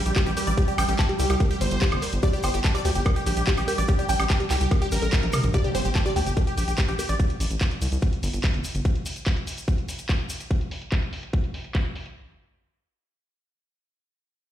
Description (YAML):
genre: psychedelic trance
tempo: 145 BPM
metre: 4/4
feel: straight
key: G minor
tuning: A4 = 439 Hz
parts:
  - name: bubbling stepped-filter texture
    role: sustained chords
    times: 0.0-5.6 s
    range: G3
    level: -34 LUFS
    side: right 4 dB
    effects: chorus, built-in reverb, sidechain pumping
  - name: supersaw stab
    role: melody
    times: 0.1-7.1 s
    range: G4 to G5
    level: -29 LUFS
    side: equal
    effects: phaser, sidechain pumping, tape echo
  - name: round analog bass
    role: bass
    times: 0.1-8.8 s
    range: G1 to D2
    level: -25 LUFS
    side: equal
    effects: none
  - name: drum and bass drum kit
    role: drums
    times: 0.1-12.1 s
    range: handclaps, hi-hat, toms, woodblock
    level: -31 LUFS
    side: equal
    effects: low-pass filter on hats, low-pass filter on cymbals, low-pass filter on perc, low-pass filter on snare, low-pass filter on toms, low-pass filter on room
  - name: tube shaker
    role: percussion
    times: 0.1-10.5 s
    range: none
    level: -39 LUFS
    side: left 1 dB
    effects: none
  - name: woody wave-folded pluck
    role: riff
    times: 0.2-7.0 s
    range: G4 to A5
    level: -32 LUFS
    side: moving between left 3 dB and right 3 dB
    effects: chorus, auto-pan, cassette tape, sidechain pumping, dub echo
  - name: electronic kick drum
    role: drums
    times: 0.2-11.8 s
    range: none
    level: -22 LUFS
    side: equal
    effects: none
  - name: impact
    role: sound effects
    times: 5.5-7.2 s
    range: none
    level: -32 LUFS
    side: equal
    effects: none
room: little or no reverb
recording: played on a big sound system in a bare room, large studio reverb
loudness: -22 LUFS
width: side -11 dB against mid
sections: 0.0-5.5 A section; 5.5-12.2 B section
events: drop 0.0-5.5; band accent 5.1; drum fill 5.2-5.5; impact 5.5-7.2; filter sweep on synth arpeggio sound 5.5-7.2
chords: 0.0 G5